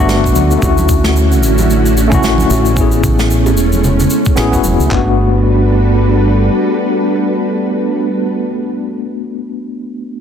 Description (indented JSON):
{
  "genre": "sunset chillout",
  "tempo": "112 BPM",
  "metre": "4/4",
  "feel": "swing 58% on 16ths",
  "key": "G lydian",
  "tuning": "A4 = 440 Hz",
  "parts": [
    { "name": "barky tine electric piano", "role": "accompaniment", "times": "0.0-10.2 s", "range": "A3 to G#4", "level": "-15 LUFS", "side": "moving between left 5 dB and right 4 dB", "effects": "fast stereo tremolo, auto-pan, tape echo" },
    { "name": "soft string machine", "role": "sustained chords", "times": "0.0-8.4 s", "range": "D3 to B4", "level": "-18 LUFS", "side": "equal", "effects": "ensemble chorus, vintage 12-bit sampler grit" },
    { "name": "fretless electric bass", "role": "bass", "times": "0.0-6.5 s", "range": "E1 to D2", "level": "-13 LUFS", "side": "equal", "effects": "tube saturation, lush chorus" },
    { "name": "snare drum and shaker", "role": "drums", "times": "0.1-4.9 s", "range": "none", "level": "-21 LUFS", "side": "equal", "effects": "none" },
    { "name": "bongos and congas", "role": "percussion", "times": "0.1-4.9 s", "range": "none", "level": "-21 LUFS", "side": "right 2 dB", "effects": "none" },
    { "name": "dusty soul sampler-style drum kit", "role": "drums", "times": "0.2-5.1 s", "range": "handclaps, kick drum", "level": "-16 LUFS", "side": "equal", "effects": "none" }
  ],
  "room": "light reverb, studio reverb",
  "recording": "dense, heavily limited modern master",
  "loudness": "-10 LUFS",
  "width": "side -8 dB against mid",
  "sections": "0.0-4.9 A section; 4.9-9.2 B section",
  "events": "none",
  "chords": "0.0 Gmaj9; 0.6 Dmaj9; 2.8 Amaj9; 4.9 Gmaj9",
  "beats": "0.09 | 0.62 1.16 1.70 2.23 | 2.77 3.30 3.84 4.37 | 4.91 5.45 5.98 6.52 | 7.05 7.59 8.12 8.66"
}